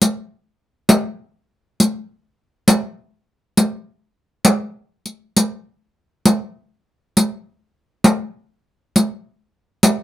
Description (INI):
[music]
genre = italian folk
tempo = 101 BPM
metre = 3/4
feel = straight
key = none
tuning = none
[part]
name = riq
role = percussion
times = 0.0-10.0 s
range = none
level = -13 LUFS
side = equal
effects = none
[sound]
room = moderate small room ambience, RT60 0.5 s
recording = close, detailed microphones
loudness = -16 LUFS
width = side -14 dB against mid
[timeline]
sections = 0.0-10.0 A section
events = none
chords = none